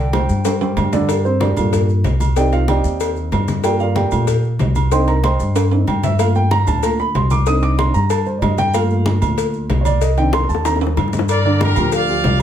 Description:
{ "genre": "latin, salsa", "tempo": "188 BPM", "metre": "4/4", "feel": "straight", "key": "G minor", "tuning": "A4 = 440 Hz", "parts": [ { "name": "concert flute", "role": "melody", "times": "0.0-0.9 s", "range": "G5", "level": "-30 LUFS", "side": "right 1 dB", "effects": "plate reverb" }, { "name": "dark concert grand piano", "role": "accompaniment", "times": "0.0-12.4 s", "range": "D3 to Eb6", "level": "-20 LUFS", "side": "right 3 dB", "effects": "none" }, { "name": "upright bass", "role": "bass", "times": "0.0-12.4 s", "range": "C2 to Bb2", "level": "-17 LUFS", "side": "equal", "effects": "none" }, { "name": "congas", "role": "percussion", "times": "0.1-12.4 s", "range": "none", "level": "-24 LUFS", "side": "left 3 dB", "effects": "none" }, { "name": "cowbell and bongos", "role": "percussion", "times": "0.1-12.4 s", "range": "none", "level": "-24 LUFS", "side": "left 9 dB", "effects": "none" }, { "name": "maracas", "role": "percussion", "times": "0.1-12.4 s", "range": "none", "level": "-36 LUFS", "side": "left 9 dB", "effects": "none" }, { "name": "timbales and agogo bells", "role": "percussion", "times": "0.1-12.4 s", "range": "none", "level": "-26 LUFS", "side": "right 9 dB", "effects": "none" }, { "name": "bright trumpet section", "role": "melody", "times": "11.3-12.4 s", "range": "G4 to F5", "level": "-19 LUFS", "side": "equal", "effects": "none" } ], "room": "light reverb", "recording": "none", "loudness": "-14 LUFS", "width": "side -10 dB against mid", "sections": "0.0-1.1 A section; 1.1-11.3 B section; 11.3-12.4 C section", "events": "drum fill 0.5-1.1, 5.6-6.2, 10.3-11.3; grand piano solo 1.1-11.3", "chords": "0.0 Csus2; 1.1 Gm7; 2.4 Cmadd9; 3.6 Gm7; 4.9 Cmadd9; 6.2 Gm7; 7.5 Cmadd9; 8.7 Gm7; 10.0 Cmadd9; 11.3 Gm7" }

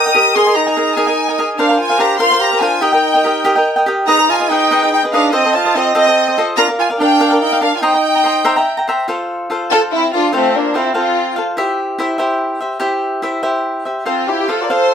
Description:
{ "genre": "mexican folk, mariachi", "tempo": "96 BPM (dotted quarters)", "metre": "6/8", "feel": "straight", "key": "Eb major, F major from 9.1 s", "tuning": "A4 = 440 Hz", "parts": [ { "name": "clear studio violin section", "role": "melody", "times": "0.0-11.4, 14.1-14.9 s", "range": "C4 to Eb6", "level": "-15 LUFS", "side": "left 2 dB", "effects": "none" }, { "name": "warm trumpet", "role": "second line", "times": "0.0-11.4, 14.1-14.9 s", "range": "A3 to Bb4", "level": "-17 LUFS", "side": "right 4 dB", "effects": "none" }, { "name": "cavaquinho", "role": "accompaniment", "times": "0.0-14.9 s", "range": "D4 to Bb5", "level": "-16 LUFS", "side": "equal", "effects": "none" } ], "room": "moderate studio reverb, RT60 0.6 s", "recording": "band playing live in one room", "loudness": "-12 LUFS", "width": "side -8 dB against mid", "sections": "0.0-9.1 A section; 9.1-14.9 B section", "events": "none", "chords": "0.4 Absus2; 1.6 Bbadd9; 2.8 Eb; 4.1 Abm; 5.3 F7; 6.6 Bb; 7.8 Eb6; 8.4 C7; 9.1 F; 11.6 C; 14.1 F" }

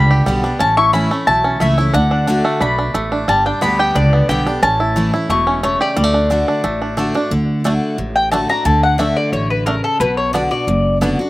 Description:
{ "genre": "bluegrass", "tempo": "179 BPM", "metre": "4/4", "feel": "straight", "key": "D major", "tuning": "A4 = 440 Hz", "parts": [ { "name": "bluegrass banjo", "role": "melody", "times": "0.0-11.1 s", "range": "G3 to G4", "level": "-20 LUFS", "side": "right 2 dB", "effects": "slapback echo" }, { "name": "mandolin", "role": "melody", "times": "0.0-11.0 s", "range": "A4 to C#6", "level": "-17 LUFS", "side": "left 2 dB", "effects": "none" }, { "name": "picked steel-string acoustic guitar", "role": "accompaniment", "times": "0.0-11.3 s", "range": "E2 to G4", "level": "-20 LUFS", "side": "left 1 dB", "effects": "slapback echo" }, { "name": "upright bass", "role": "bass", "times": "0.0-11.1 s", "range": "E1 to D2", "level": "-18 LUFS", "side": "right 1 dB", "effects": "none" } ], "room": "little or no reverb", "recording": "recorded outdoors, with no room sound", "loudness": "-13 LUFS", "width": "side -18 dB against mid", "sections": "0.0-7.3 A section; 7.3-11.3 B section", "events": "mandolin solo 7.3-11.3", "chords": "0.0 G; 0.6 A; 1.9 D; 3.3 G; 4.6 A; 6.0 D; 10.0 Bm" }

